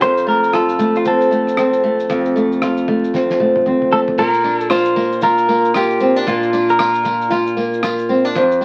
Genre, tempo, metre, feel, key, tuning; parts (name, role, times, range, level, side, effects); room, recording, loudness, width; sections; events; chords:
acoustic pop; 115 BPM; 4/4; swing 60% on 16ths; Bb major; A4 = 440 Hz
direct-recorded clean electric guitar; melody; 0.0-7.4 s; F4 to C5; -19 LUFS; equal
flamenco guitar; accompaniment; 0.0-8.6 s; F2 to F4; -18 LUFS; equal
cloth-damped thuddy drum kit; drums; 0.0-8.6 s; crash cymbal, kick drum, rim click, shaker, snare drum, toms; -30 LUFS; equal
tambourine; percussion; 4.4-8.6 s; -39 LUFS; equal
moderate studio reverb, RT60 0.6 s; very old 78 rpm record, vinyl crackle; -16 LUFS; mono
0.0-4.2 A section; 4.2-8.6 B section
drum fill 3.1-4.2
0.0 F; 4.2 Bb